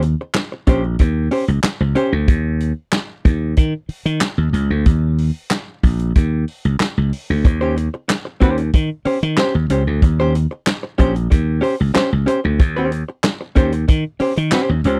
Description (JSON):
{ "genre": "funk", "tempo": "93 BPM", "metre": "4/4", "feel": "straight", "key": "Eb mixolydian", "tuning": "A4 = 440 Hz", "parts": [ { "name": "archtop guitar, miked and amplified", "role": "accompaniment", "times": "0.0-2.2, 7.5-15.0 s", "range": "Db4 to C5", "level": "-21 LUFS", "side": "equal", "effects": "tube saturation" }, { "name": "slap bass", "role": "bass", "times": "0.0-15.0 s", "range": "Bb1 to Eb3", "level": "-20 LUFS", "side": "equal", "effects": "none" }, { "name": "vintage drum kit", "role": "drums", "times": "0.0-15.0 s", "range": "handclaps, hi-hat, kick drum, snare drum", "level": "-17 LUFS", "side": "equal", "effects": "none" } ], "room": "little or no reverb", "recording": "dry, close 1970s-style studio recording", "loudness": "-18 LUFS", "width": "mono", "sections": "0.0-15.0 A section", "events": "none", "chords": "0.0 Eb6" }